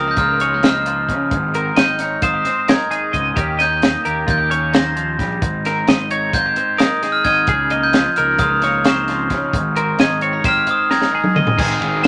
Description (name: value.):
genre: math rock and midwest emo.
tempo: 263 BPM (eighths).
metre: 9/8.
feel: straight.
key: Ab major.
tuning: A4 = 440 Hz.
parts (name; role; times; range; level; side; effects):
glockenspiel with hard plastic mallets; melody; 0.0-11.4 s; Db6 to Bb6; -21 LUFS; equal; none.
twelve-string electric guitar; accompaniment; 0.0-12.1 s; Ab2 to G4; -28 LUFS; equal; none.
twelve-string electric guitar; arpeggios; 0.0-12.1 s; C4 to Eb5; -24 LUFS; equal; none.
fuzz fingered electric bass; bass; 0.0-12.1 s; Ab1 to Db3; -27 LUFS; equal; overdrive.
compact cocktail drum kit; drums; 0.2-12.1 s; crash cymbal, hi-hat, kick drum, ride cymbal, snare drum, toms; -20 LUFS; equal; none.
overdriven semi-hollow guitar; riff; 11.6-12.1 s; Ab3 to Ab4; -24 LUFS; equal; none.
room: moderate club reverb, RT60 0.5 s.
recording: none.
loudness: -17 LUFS.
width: mono.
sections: 0.0-11.6 A section.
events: drum fill 10.9-11.6.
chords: 0.0 Db69; 1.3 Abmaj9; 3.4 Eb7; 5.4 Abmaj9; 7.5 Db69; 9.5 Abmaj9.